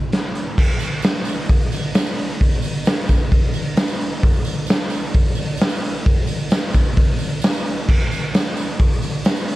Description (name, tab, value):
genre	rock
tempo	131 BPM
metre	4/4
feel	straight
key	none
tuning	none
part	raw garage drum kit	drums	0.1-9.6 s	crash cymbal, hi-hat, kick drum, snare drum	-16 LUFS	equal	none
part	tambourine	percussion	0.6-9.5 s	none	-38 LUFS	right 6 dB	none
room	little or no reverb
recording	dark, warm production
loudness	-16 LUFS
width	side -17 dB against mid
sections	0.6-9.6 A section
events	none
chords	none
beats	0.11 | 0.57 1.03 1.49 1.95 | 2.40 2.86 3.32 3.77 | 4.23 4.69 5.14 5.60 | 6.06 6.52 6.97 7.43 | 7.89 8.34 8.80 9.26